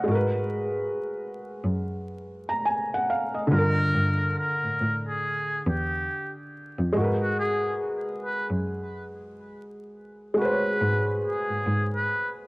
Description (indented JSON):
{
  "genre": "lo-fi hip hop",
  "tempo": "70 BPM",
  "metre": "4/4",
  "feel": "swing 61% on 16ths",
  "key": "G# dorian",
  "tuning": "A4 = 439 Hz",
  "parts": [
    { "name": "felt-muted upright piano", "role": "accompaniment", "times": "0.0-12.5 s", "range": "D3 to A#5", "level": "-28 LUFS", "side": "equal", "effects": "cassette tape, low-pass filter" },
    { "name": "muted cello", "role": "bass", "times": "0.1-12.0 s", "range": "E2 to A2", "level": "-28 LUFS", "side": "equal", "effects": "none" },
    { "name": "trumpet with metal mute", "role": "melody", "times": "3.5-12.3 s", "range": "F#4 to B4", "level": "-28 LUFS", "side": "equal", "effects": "low-pass filter, cassette tape" }
  ],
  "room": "moderate spring reverb, RT60 1.7 s",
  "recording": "home recording on cassette, vinyl crackle",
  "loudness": "-24 LUFS",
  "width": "side -24 dB against mid",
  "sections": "0.1-12.5 A section",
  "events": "break 0.1-3.5",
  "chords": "0.1 G#m9; 3.5 Gm9; 6.9 G#m9"
}